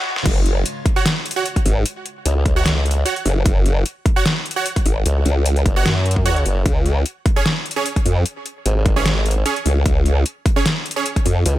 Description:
heavy wobble dubstep; 150 BPM; 4/4; swing 54% on 16ths, half-time; A4 = 445 Hz
dubstep drum kit; drums; 0.2-11.5 s; crash cymbal, hi-hat, snare drum; -22 LUFS; left 1 dB; overdrive
formant-sweep wobble bass; bass; 0.3-11.4 s; F#1 to E#2; -16 LUFS; equal; chorus, overdrive
electronic kick drum; drums; 0.3-11.2 s; -18 LUFS; equal; overdrive
supersaw stab; stabs; 1.0-11.0 s; C#4 to F#5; -24 LUFS; right 5 dB; tape echo
formant-sweep wobble bass; bass; 2.3-11.6 s; F#1 to F#2; -18 LUFS; equal; chorus, overdrive
digital ambience; high-pass filter; -16 LUFS; side -15 dB against mid
0.3-11.6 A section
break 0.0; drum fill 0.0; drop 0.3-11.6
0.3 F#5; 6.7 C#5
| 0.26 0.66 1.06 1.46 | 1.86 2.26 2.66 3.06 | 3.46 3.86 4.26 4.66 | 5.06 5.46 5.86 6.26 | 6.66 7.06 7.46 7.86 | 8.26 8.66 9.06 9.46 | 9.86 10.26 10.66 11.06 | 11.46

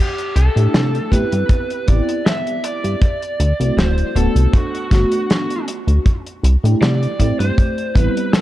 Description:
vaporwave; 79 BPM; 4/4; swing 54% on 16ths; A dorian; A4 = 440 Hz
lead guitar through a small cranked amp; melody; 0.0-8.4 s; F#4 to E5; -24 LUFS; right 1 dB; overdrive, tape echo
warm soul drum kit; drums; 0.2-8.4 s; hi-hat, snare drum; -21 LUFS; equal
chorused synth bass; bass; 0.4-8.1 s; D1 to C3; -15 LUFS; equal; tube saturation
FM electric piano with soft pad layer; accompaniment; 0.6-8.4 s; G3 to G4; -22 LUFS; equal; tremolo, analog chorus
kick drum; drums; 1.1-8.1 s; -14 LUFS; equal
light reverb; dark, warm production; -14 LUFS; side -15 dB against mid
0.0-8.4 A section
0.0 C69; 1.1 Am9; 3.0 D7; 4.5 Gmaj9 (rootless); 6.1 C69; 7.2 Am9
0.74 1.50 2.26 | 3.02 3.78 4.54 5.30 | 6.06 6.82 7.58 8.34

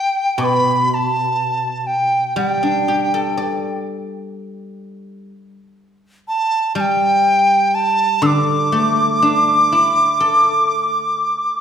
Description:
chinese traditional, Chinese chamber ensemble; 61 BPM; 4/4; rubato; D zhi mode; A4 = 442 Hz
bright large dizi; melody; 0.0-11.6 s; G5 to E6; -15 LUFS; equal
guzheng; accompaniment; 0.4-11.6 s; B2 to D5; -21 LUFS; equal
wet recital hall reverb, RT60 1.5 s; recorded in a church or concert hall; -14 LUFS; side -8 dB against mid
0.0-11.6 A section
0.40 1.39 | 2.38 3.36 4.34 5.31 | 6.28 7.25 8.24 9.22 | 10.21 11.22

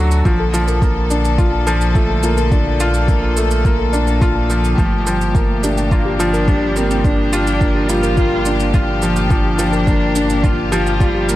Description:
piano and strings electronica; 106 BPM; 4/4; straight; G minor; A4 = 440 Hz
rich chamber string section; sustained chords; 0.0-11.4 s; Bb2 to A4; -23 LUFS; left 2 dB; sidechain pumping
soft round pluck; arpeggios; 0.0-11.4 s; F4 to A5; -27 LUFS; left 1 dB; chorus, sidechain pumping, digital delay
felt-muted upright piano; riff; 0.0-11.4 s; F3 to A4; -19 LUFS; equal; digital delay
round analog bass; bass; 0.0-11.4 s; G1 to D2; -19 LUFS; equal; sidechain pumping
shaker; drums; 0.1-11.4 s; -29 LUFS; right 5 dB; overdrive
electronic kick drum; drums; 0.3-11.1 s; -16 LUFS; equal; overdrive
dark cello; melody; 4.8-11.4 s; G3 to F4; -21 LUFS; left 1 dB
light reverb, studio reverb; -13 LUFS; side -15 dB against mid
0.0-11.4 A section
0.3 Bbmaj7; 4.8 Gm7
| 0.25 0.82 1.38 1.95 | 2.52 3.08 3.65 4.21 | 4.78 5.35 5.91 6.48 | 7.04 7.61 8.18 8.74 | 9.31 9.87 10.44 11.01

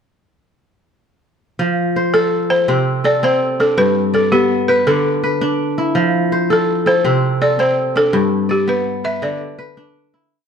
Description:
west african traditional, West African string and xylophone music; 110 BPM (dotted quarters); 12/8; straight; F lydian; A4 = 439 Hz
kora; arpeggios; 1.6-10.5 s; G2 to D5; -16 LUFS; equal
balafon; melody; 2.1-9.9 s; G4 to E5; -16 LUFS; equal
moderate recital hall reverb, RT60 1.6 s; dark, warm production; -14 LUFS; side -7 dB against mid
1.6-10.3 A section
fade-out 8.1-10.3
1.6 F; 2.7 Amadd11/C; 3.8 G; 4.9 D5; 6.0 F; 7.0 Amadd11/C; 8.1 G; 9.2 Bmadd11/D
| 1.60 2.14 2.69 3.23 | 3.77 4.32 4.86 5.41 | 5.95 6.50 7.04 7.58 | 8.13 8.68 9.22 9.77

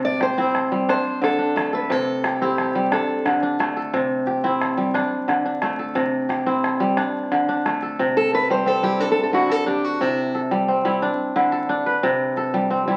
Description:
west african traditional, West African string and xylophone music; 118 BPM (dotted quarters); 12/8; straight; C major; A4 = 440 Hz
fingerpicked steel-string acoustic guitar; melody; 0.0-3.3, 8.2-10.4 s; E4 to D5; -25 LUFS; equal
kora; arpeggios; 0.0-13.0 s; C3 to B4; -23 LUFS; equal
calabash; percussion; 0.2-8.0 s; -30 LUFS; equal
moderate large studio reverb, RT60 1.2 s; very old 78 rpm record, vinyl crackle; -21 LUFS; mono
0.0-8.0 A section; 8.0-13.0 B section
0.0 C; 0.9 D5; 1.9 C; 2.9 D5; 3.9 C; 4.9 D5; 6.0 C; 7.0 D5; 8.0 C; 9.0 D5; 10.0 C; 11.0 D5; 12.0 C
0.38 0.89 1.40 | 1.90 2.41 2.92 3.43 | 3.93 4.44 4.95 5.46 | 5.96 6.47 6.98 7.49 | 7.99 8.50 9.01 9.51 | 10.02 10.52 11.03 11.54 | 12.04 12.55

